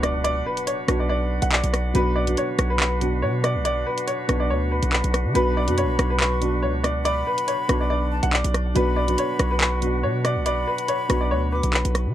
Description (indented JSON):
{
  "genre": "hip hop, drill",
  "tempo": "141 BPM",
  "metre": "4/4",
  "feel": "half-time",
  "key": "B minor",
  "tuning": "A4 = 440 Hz",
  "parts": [
    { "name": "clear upright piano", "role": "melody", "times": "0.0-12.1 s", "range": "B4 to F#5", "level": "-26 LUFS", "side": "equal", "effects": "low-pass filter, tape echo" },
    { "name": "dark baby grand piano", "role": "accompaniment", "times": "0.0-12.1 s", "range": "B2 to B4", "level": "-28 LUFS", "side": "right 1 dB", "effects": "low-pass filter" },
    { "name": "flute section", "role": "sustained chords", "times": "0.0-12.1 s", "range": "D4 to F#5", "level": "-32 LUFS", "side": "equal", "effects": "none" },
    { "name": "hard-hitting 808-style bass", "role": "bass", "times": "0.0-12.1 s", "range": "B1 to D3", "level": "-24 LUFS", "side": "equal", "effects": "none" },
    { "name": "drill drum kit", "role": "drums", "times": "0.0-12.1 s", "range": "handclaps, hi-hat, rim click", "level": "-23 LUFS", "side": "equal", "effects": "none" },
    { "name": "breathy hollow jazz flute", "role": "second line", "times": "5.4-11.7 s", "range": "A5 to D6", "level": "-30 LUFS", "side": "left 4 dB", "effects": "tape echo" }
  ],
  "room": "little or no reverb",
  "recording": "dark, warm production",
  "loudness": "-20 LUFS",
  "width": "side -12 dB against mid",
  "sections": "0.0-12.1 A section",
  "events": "none",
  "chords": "0.0 Bm"
}